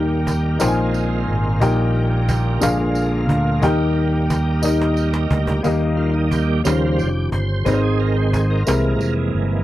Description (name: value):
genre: slow gospel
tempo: 60 BPM (dotted quarters)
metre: 6/8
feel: straight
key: Eb major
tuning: A4 = 440 Hz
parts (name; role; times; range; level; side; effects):
- warm upright piano; accompaniment; 0.0-9.6 s; Ab2 to Ab5; -21 LUFS; left 2 dB; none
- bright tonewheel organ; sustained chords; 0.0-9.6 s; Db3 to C5; -25 LUFS; right 4 dB; slow rotary speaker, overdrive, chorus vibrato
- fingered electric bass; bass; 0.0-9.6 s; F1 to Eb2; -20 LUFS; equal; none
- cajon; drums; 0.3-9.4 s; none; -24 LUFS; equal; none
- tambourine; percussion; 0.3-9.3 s; none; -34 LUFS; right 6 dB; none
room: little or no reverb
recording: dry, close 1970s-style studio recording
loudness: -16 LUFS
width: side -14 dB against mid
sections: 0.0-5.6 A section; 5.6-9.6 B section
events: drum fill 4.6-5.6; tonewheel organ solo 5.6-9.6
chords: 0.0 Eb; 0.6 Bb9sus4; 1.6 Eb/Bb; 2.6 Bb7; 3.6 Eb; 6.7 Eb13; 7.7 Ab; 8.7 C7b13